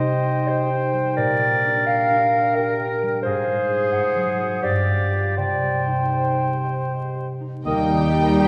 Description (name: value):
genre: classical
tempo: 77-89 BPM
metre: 3/4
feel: rubato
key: C minor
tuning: A4 = 440 Hz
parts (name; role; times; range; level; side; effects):
- mellow clarinet; second line; 0.0-7.9 s; Bb4 to F5; -24 LUFS; equal; none
- mellow concert flute; second line; 0.0-8.5 s; F5 to G5; -30 LUFS; equal; none
- warm oboe; second line; 0.0-7.9 s; G4 to Eb5; -31 LUFS; equal; none
- concert harp; arpeggios; 0.0-8.5 s; G2 to Eb5; -27 LUFS; equal; none
- warm studio violin section; melody; 7.7-8.5 s; G5; -30 LUFS; equal; none
- rich studio violin section; second line; 7.7-8.5 s; Bb3 to Eb5; -33 LUFS; equal; none
- rich studio viola section; accompaniment; 7.7-8.5 s; G3; -26 LUFS; equal; none
- warm French horn section; sustained chords; 7.7-8.5 s; G3; -28 LUFS; equal; none
- warm trombone section; sustained chords; 7.7-8.5 s; Eb3 to Bb3; -30 LUFS; equal; none
- clear trumpet; stabs; 7.7-8.5 s; Eb4; -29 LUFS; equal; none
- mellow tuba; bass; 7.7-8.5 s; Eb2; -26 LUFS; equal; none
- warm studio double bass section; bass; 7.7-8.5 s; Eb2; -29 LUFS; equal; none
- rich studio cello section; bass; 8.4-8.5 s; G4; -27 LUFS; equal; none
room: wet scoring stage reverb, RT60 1.6 s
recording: heard from further back in the room, vinyl crackle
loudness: -21 LUFS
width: mono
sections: 0.0-7.7 A section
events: none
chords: 0.0 Cm; 1.2 Gm/Bb; 3.2 Fm/Ab; 3.9 Ab7; 4.6 G7; 5.4 Cm; 7.7 Eb